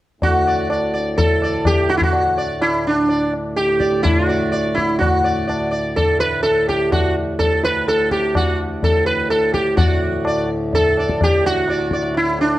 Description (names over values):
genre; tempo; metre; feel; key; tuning
indian classical, Hindustani; 126 BPM; 5/4; straight; D raga bilaval; A4 = 440 Hz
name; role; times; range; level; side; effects
sitar; melody; 0.2-12.6 s; D4 to D5; -17 LUFS; right 1 dB; none
hand-pumped harmonium; drone; 0.2-12.6 s; D2 to A2; -24 LUFS; equal; none
tabla; percussion; 0.2-12.6 s; none; -21 LUFS; left 2 dB; none
room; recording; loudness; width
moderate recital hall reverb, RT60 1.4 s; worn, warbling old tape, cassette tape, warbly pitch drift; -15 LUFS; side -15 dB against mid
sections
0.2-9.8 A section; 9.8-12.6 B section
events
none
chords
none